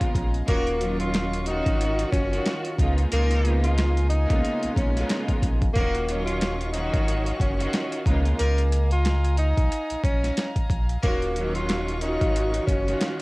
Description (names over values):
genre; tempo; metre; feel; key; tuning
hip hop, boom-bap hip-hop; 91 BPM; 4/4; swing 57% on 16ths; Eb minor; A4 = 445 Hz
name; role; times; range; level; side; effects
clear studio string section; accompaniment; 0.0-13.2 s; Cb3 to Gb4; -28 LUFS; right 1 dB; cassette tape, high-pass filter, low-pass filter, plate reverb
warm studio string section; sustained chords; 0.0-13.2 s; Gb3 to Db6; -38 LUFS; left 1 dB; high-pass filter, low-pass filter, cassette tape, plate reverb
boom bap sampler-style drum kit; drums; 0.0-13.2 s; hi-hat, kick drum, snare drum; -26 LUFS; equal; overdrive, cassette tape
sub bass with octave; bass; 0.2-12.9 s; Eb1 to Db2; -24 LUFS; equal; none
breathy tenor saxophone; melody; 0.5-13.2 s; Bb3 to F4; -28 LUFS; equal; high-pass filter, low-pass filter, cassette tape, plate reverb
muted trumpet section; stabs; 0.5-11.2 s; Bb3 to Bb4; -35 LUFS; equal; high-pass filter, low-pass filter, cassette tape, analog delay, plate reverb
room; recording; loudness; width
little or no reverb; home recording on cassette; -21 LUFS; side -24 dB against mid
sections
0.0-13.2 A section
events
none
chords
0.5 Ebm9; 2.8 Db13; 5.8 Ebm9; 8.1 Db13; 11.0 Ebm9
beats
| 0.48 1.14 1.80 2.46 | 3.12 3.78 4.44 5.10 | 5.76 6.42 7.08 7.74 | 8.39 9.05 9.71 10.37 | 11.03 11.69 12.35 13.01